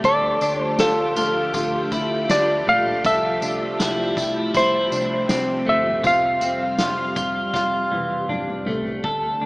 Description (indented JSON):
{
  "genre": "dream pop",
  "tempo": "80 BPM",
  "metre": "4/4",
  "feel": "straight",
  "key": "F major",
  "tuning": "A4 = 440 Hz",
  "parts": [
    { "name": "clean lap steel guitar", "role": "melody", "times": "0.0-8.3 s", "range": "A4 to F5", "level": "-20 LUFS", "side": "equal", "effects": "analog delay" },
    { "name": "string machine, full ensemble", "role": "sustained chords", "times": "0.0-9.5 s", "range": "C3 to F5", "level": "-28 LUFS", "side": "equal", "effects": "ensemble chorus" },
    { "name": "semi-hollow electric guitar", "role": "arpeggios", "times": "0.0-9.5 s", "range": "E3 to A4", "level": "-23 LUFS", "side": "equal", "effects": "lush chorus, analog delay" },
    { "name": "vintage muted picked electric bass", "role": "bass", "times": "0.0-9.5 s", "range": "F1 to D2", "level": "-35 LUFS", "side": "equal", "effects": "none" },
    { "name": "soft-mallet drum kit", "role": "drums", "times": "0.0-9.2 s", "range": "kick drum, snare drum, tambourine, toms", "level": "-28 LUFS", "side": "equal", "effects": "none" }
  ],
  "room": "wet lush hall reverb, RT60 2.7 s",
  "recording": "dreamy mix soaked in reverb, small speaker sound",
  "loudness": "-18 LUFS",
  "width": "side -24 dB against mid",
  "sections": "0.0-9.0 A section",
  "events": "drum fill 7.5-9.0",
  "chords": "0.0 Dmadd9; 3.0 Fmaj7/C; 6.0 Fsus2",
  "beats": "| 0.04 0.79 1.54 2.29 | 3.04 3.79 4.54 5.29 | 6.04 6.79 7.54 8.29 | 9.04"
}